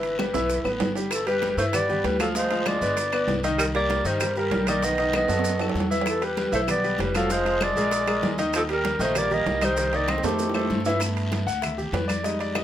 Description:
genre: Afro-Cuban jazz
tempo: 194 BPM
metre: 4/4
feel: straight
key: unclear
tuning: A4 = 441 Hz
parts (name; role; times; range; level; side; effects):
- breathy clarinet; melody; 0.0-10.7 s; G4 to D#5; -26 LUFS; left 1 dB; none
- clear grand piano; accompaniment; 0.0-12.6 s; Eb3 to F#5; -27 LUFS; equal; none
- upright bass; bass; 0.0-12.6 s; F1 to G2; -31 LUFS; equal; none
- bongos; percussion; 0.0-12.6 s; none; -37 LUFS; left 5 dB; none
- congas; percussion; 0.0-12.6 s; none; -33 LUFS; left 1 dB; none
- maracas; percussion; 0.0-12.6 s; none; -37 LUFS; right 4 dB; none
- timbales; percussion; 0.0-12.6 s; none; -32 LUFS; right 7 dB; none
- claves; percussion; 0.2-12.6 s; none; -34 LUFS; left 5 dB; none
- guiro; percussion; 0.2-12.6 s; none; -39 LUFS; left 2 dB; none
- breathy tenor saxophone; second line; 1.1-10.7 s; Eb3 to C4; -30 LUFS; right 3 dB; none
room: moderate studio ambience, RT60 0.5 s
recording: none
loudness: -22 LUFS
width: side -11 dB against mid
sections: 0.0-1.1 A section; 1.1-11.0 B section; 11.0-12.6 C section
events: drum fill 0.2-1.1, 5.3-6.1, 10.1-11.0; grand piano solo 11.0-12.6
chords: 0.0 G69; 1.1 G6; 2.4 Dm7b5; 3.0 G; 3.6 Cm9; 4.8 B7; 6.1 Em7; 7.3 Fm; 7.9 Bb7; 8.5 Eb; 9.8 Cm; 10.4 F9; 11.0 G69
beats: 0.19 0.50 0.81 | 1.12 1.43 1.74 2.05 | 2.36 2.67 2.98 3.28 | 3.59 3.90 4.21 4.52 | 4.83 5.14 5.45 5.76 | 6.07 6.38 6.68 6.99 | 7.30 7.61 7.92 8.23 | 8.54 8.85 9.16 9.47 | 9.78 10.08 10.39 10.70 | 11.01 11.32 11.63 11.94 | 12.25 12.56

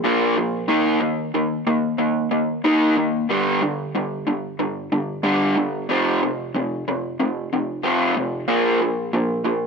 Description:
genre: rock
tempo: 92 BPM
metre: 4/4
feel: straight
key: G minor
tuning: A4 = 440 Hz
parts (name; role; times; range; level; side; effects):
- raw garage guitar; solo; 0.0-9.7 s; F2 to Eb4; -19 LUFS; equal; overdrive
room: light reverb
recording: dry, close 1970s-style studio recording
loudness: -19 LUFS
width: side -5 dB against mid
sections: 0.0-9.7 A section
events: none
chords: 0.0 Bb5; 0.7 Eb5; 3.3 G5; 5.9 F5; 8.5 Bb5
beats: 0.05 | 0.70 1.35 2.00 2.65 | 3.30 3.94 4.59 5.24 | 5.89 6.54 7.19 7.84 | 8.49 9.13

